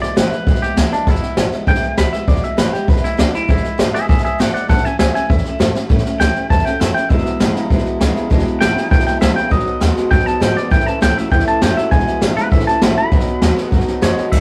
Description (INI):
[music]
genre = rockabilly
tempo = 199 BPM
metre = 4/4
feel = straight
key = E major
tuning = A4 = 441 Hz
[part]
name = twangy electric guitar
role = melody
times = 0.0-14.4 s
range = D4 to B5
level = -22 LUFS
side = equal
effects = none
[part]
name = picked steel-string acoustic guitar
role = accompaniment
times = 0.0-14.4 s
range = E2 to F#4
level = -25 LUFS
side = equal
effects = none
[part]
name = upright bass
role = bass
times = 0.0-14.4 s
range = E1 to G#2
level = -24 LUFS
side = equal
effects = none
[part]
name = jazz brush drum kit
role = drums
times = 0.0-14.4 s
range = crash cymbal, hi-hat, kick drum, snare drum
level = -18 LUFS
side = equal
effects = none
[part]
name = electric guitar through a small old amp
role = riff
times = 7.1-14.4 s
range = E2 to G#3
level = -25 LUFS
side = equal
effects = none
[sound]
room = moderate studio reverb, RT60 0.6 s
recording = rough rehearsal-room recording, warm saturation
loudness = -16 LUFS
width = mono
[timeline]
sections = 0.0-14.3 A section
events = clean electric guitar solo 0.0-14.3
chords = 0.0 E; 4.7 A; 7.1 E; 9.5 B; 10.7 A; 11.9 E; 12.5 A; 13.1 B